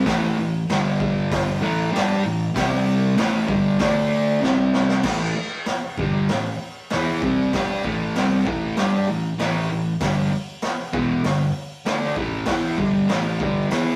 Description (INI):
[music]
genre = garage rock duo or trio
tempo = 97 BPM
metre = 4/4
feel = straight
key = unclear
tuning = A4 = 440 Hz
[part]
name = fuzz guitar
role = riff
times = 0.0-14.0 s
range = E2 to G4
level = -22 LUFS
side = equal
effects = distortion
[part]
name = raw garage drum kit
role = drums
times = 0.1-13.8 s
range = crash cymbal, hi-hat, kick drum, snare drum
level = -28 LUFS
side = equal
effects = none
[sound]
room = moderate stone room reverb, RT60 1.0 s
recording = rough rehearsal-room recording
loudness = -22 LUFS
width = mono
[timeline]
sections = 0.0-5.0 A section; 5.0-14.0 B section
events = drum fill 4.4-5.0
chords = 0.1 A5; 0.7 G5; 1.6 A5; 2.6 C5; 3.2 A5; 3.8 D5; 4.4 C5; 5.0 A5; 10.0 G5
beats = | 0.07 0.69 1.31 1.93 | 2.55 3.17 3.80 4.42 | 5.04 5.66 6.28 6.90 | 7.52 8.14 8.76 9.38 | 9.99 10.61 11.23 11.85 | 12.46 13.08 13.70